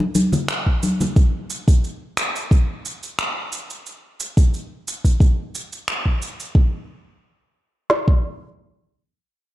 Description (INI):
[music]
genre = organic downtempo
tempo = 89 BPM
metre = 4/4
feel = straight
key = none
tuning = none
[part]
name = congas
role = percussion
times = 0.0-1.1 s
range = none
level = -20 LUFS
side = left 1 dB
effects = none
[part]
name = electronic cabasa and finger snaps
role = drums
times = 0.1-6.5 s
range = none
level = -26 LUFS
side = right 1 dB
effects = none
[part]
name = organic electronic drum kit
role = drums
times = 0.7-8.2 s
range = kick drum, snare drum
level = -15 LUFS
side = equal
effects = none
[sound]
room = little or no reverb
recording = dark, warm production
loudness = -18 LUFS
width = side -15 dB against mid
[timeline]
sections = 0.0-6.5 A section; 6.5-9.2 B section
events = none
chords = none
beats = 0.48 | 1.16 1.83 2.51 3.18 | 3.85 4.53 5.20 5.88 | 6.55 7.22 7.90